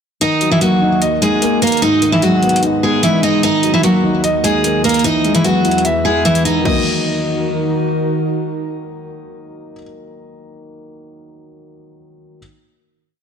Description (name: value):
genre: hip hop, trap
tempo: 149 BPM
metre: 4/4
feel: half-time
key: Eb phrygian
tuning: A4 = 440 Hz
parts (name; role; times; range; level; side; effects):
- picked steel-string acoustic guitar; melody; 0.2-7.8 s; Fb3 to Eb5; -14 LUFS; right 1 dB; ping-pong delay
- dark concert grand piano; accompaniment; 0.2-12.4 s; Ab2 to E5; -19 LUFS; left 2 dB; none
- warbly tape-like pad; sustained chords; 0.7-9.8 s; Eb2 to Bb4; -22 LUFS; right 1 dB; chorus, built-in reverb
- trap drum kit; drums; 0.2-6.7 s; crash cymbal, hi-hat, kick drum; -22 LUFS; left 1 dB; none
room: light reverb, studio reverb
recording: blown-out, overdriven recording, overdrive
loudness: -12 LUFS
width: side -7 dB against mid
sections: 0.2-6.7 breakdown; 6.7-9.9 final chord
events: kick muted 5.0-6.7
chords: 0.2 Ebm; 1.8 Abm; 3.4 Ebm; 5.0 E; 6.7 Ebm